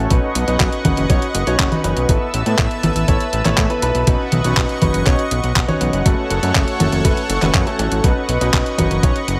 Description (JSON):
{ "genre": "italo disco", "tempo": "121 BPM", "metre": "4/4", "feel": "straight", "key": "unclear", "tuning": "A4 = 440 Hz", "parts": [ { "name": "lush unison pad", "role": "sustained chords", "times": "0.0-9.4 s", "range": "A4 to E6", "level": "-26 LUFS", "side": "equal", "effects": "chorus" }, { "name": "warm baby grand piano", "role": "stabs", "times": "0.0-9.2 s", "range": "A3 to C#5", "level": "-24 LUFS", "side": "equal", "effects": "digital delay" }, { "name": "fat analog bass", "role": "bass", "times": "0.0-9.4 s", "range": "F#1 to A2", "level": "-23 LUFS", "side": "equal", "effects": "none" }, { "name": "detuned 8-bit digital drum machine", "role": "drums", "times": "0.1-9.4 s", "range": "congas, handclaps, hi-hat", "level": "-23 LUFS", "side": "equal", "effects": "none" }, { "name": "electronic kick drum", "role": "drums", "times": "0.1-9.1 s", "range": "none", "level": "-20 LUFS", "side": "equal", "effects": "none" } ], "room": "light reverb, digital ambience", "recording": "none", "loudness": "-17 LUFS", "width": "mono", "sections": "0.0-9.4 A section", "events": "none", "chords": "0.1 Badd9; 2.1 Asus2; 4.1 Badd9; 6.1 F#m; 8.0 Badd9", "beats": "| 0.11 0.60 1.10 1.59 | 2.09 2.58 3.08 3.58 | 4.07 4.57 5.07 5.56 | 6.06 6.55 7.05 7.54 | 8.04 8.54 9.03" }